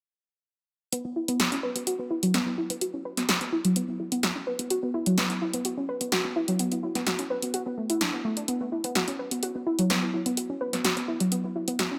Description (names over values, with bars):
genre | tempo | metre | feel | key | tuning
progressive house | 127 BPM | 4/4 | straight | unclear | A4 = 440 Hz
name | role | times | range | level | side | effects
soft round pluck | arpeggios | 0.9-12.0 s | F#3 to B4 | -30 LUFS | equal | analog chorus, digital delay
deep house drum kit | drums | 0.9-11.9 s | hi-hat, snare drum | -30 LUFS | equal | none
room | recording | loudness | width
moderate lush hall reverb, RT60 1.6 s, digital ambience | none | -28 LUFS | mono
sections
0.9-12.0 A section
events
none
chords
none